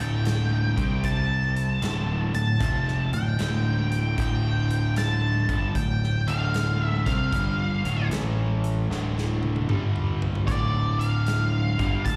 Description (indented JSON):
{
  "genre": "blues rock power trio and southern rock",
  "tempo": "76 BPM",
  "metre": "4/4",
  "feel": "swing 67% on 8ths",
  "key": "D minor",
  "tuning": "A4 = 440 Hz",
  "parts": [
    { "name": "octave-fuzz lead guitar", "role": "melody", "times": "0.0-12.2 s", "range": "D5 to A5", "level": "-32 LUFS", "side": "equal", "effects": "distortion, slapback echo" },
    { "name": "overdriven electric guitar", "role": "riff", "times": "0.0-12.2 s", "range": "D2 to C4", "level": "-33 LUFS", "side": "equal", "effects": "none" },
    { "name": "overdriven picked electric bass", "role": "bass", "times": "0.0-12.2 s", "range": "D1 to C2", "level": "-27 LUFS", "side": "equal", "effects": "none" },
    { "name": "big rock drum kit", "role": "drums", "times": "0.3-12.2 s", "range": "hi-hat, kick drum, snare drum, toms", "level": "-33 LUFS", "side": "equal", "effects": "none" }
  ],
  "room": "little or no reverb",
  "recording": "live gig heard through the venue's PA, recital hall reverb",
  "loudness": "-25 LUFS",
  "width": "mono",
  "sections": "0.0-12.2 A section",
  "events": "drum fill 8.9-10.5",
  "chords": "0.0 D5; 0.6 C5; 1.8 Dm; 8.1 A5; 8.9 D5; 9.7 G5; 10.5 Dm"
}